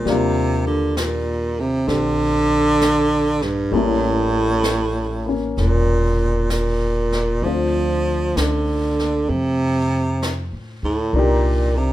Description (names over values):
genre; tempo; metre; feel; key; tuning
jazz ballad; 65 BPM; 4/4; swing 67% on 8ths; unclear; A4 = 443 Hz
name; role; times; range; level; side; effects
clear baritone saxophone; melody; 0.0-11.9 s; G2 to F3; -19 LUFS; right 2 dB; none
warm grand piano; accompaniment; 0.0-11.9 s; G3 to Bb4; -25 LUFS; left 4 dB; none
upright bass; bass; 0.1-11.9 s; E1 to A2; -23 LUFS; equal; none
jazz brush drum kit; drums; 0.1-11.9 s; brushed snare drum, hi-hat, snare drum; -30 LUFS; left 2 dB; none
room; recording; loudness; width
light reverb; minimal, uncompressed stereo recording; -17 LUFS; side -14 dB against mid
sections
0.0-11.9 A section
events
none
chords
0.1 Ebmaj9; 3.7 A7b9; 7.4 Dm7; 11.1 Cm9